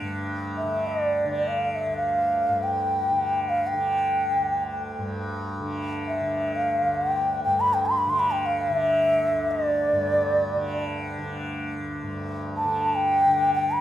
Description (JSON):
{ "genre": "indian classical, Hindustani", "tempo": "free time", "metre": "none", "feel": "none", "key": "unclear", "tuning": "A4 = 440 Hz", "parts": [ { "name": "tanpura", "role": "drone", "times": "0.0-13.8 s", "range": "D2 to D3", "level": "-30 LUFS", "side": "equal", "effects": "none" }, { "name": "mellow bansuri", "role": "melody", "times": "0.6-13.8 s", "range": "D5 to C6", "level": "-22 LUFS", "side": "equal", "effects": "none" } ], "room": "moderate recital hall reverb, RT60 1.7 s", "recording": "minimal, uncompressed stereo recording", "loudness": "-22 LUFS", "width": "side -12 dB against mid", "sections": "0.0-12.0 A section; 12.0-13.8 A section", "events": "none", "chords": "none", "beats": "free time" }